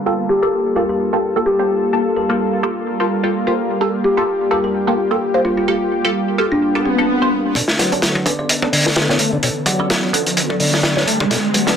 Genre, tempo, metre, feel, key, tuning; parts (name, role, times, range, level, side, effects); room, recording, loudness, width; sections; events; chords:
breakbeat, breaks; 128 BPM; 4/4; swing 56% on 16ths; A4 = 442 Hz
lush unison pad; sustained chords; 0.0-11.8 s; D3 to B4; -22 LUFS; equal; chorus, sidechain pumping
filtered dub chord stab; stabs; 0.1-11.7 s; Bb3 to C#5; -21 LUFS; right 1 dB; phaser, analog chorus, cassette tape, tape echo
kalimba; melody; 0.3-11.7 s; C4 to D5; -20 LUFS; left 1 dB; AM radio sound, tape echo
swell and riser; sound effects; 6.7-11.8 s; -22 LUFS; equal
percussive tonewheel organ; riff; 7.6-11.8 s; B2 to A3; -21 LUFS; equal; overdrive, chorus vibrato, slow rotary speaker, tube saturation, vintage 12-bit sampler grit, low-pass filter
crunchy breakbeat drum kit; drums; 7.6-11.8 s; hi-hat, kick drum, snare drum; -16 LUFS; equal; high-pass filter on kick, high-pass filter on hats, high-pass filter on snare, high-pass filter on room
wet small room ambience, RT60 0.5 s; dense, heavily limited modern master, low-pass filter; -14 LUFS; side -8 dB against mid
0.0-7.6 A section; 7.6-11.8 B section
filter sweep 0.0-7.6; swell 6.7-7.6; build-up 7.6-11.8; filter sweep on tonewheel organ 7.6-11.8; riser 9.2-11.8; drum fill 11.3-11.8
0.0 Gm9; 7.6 Bm9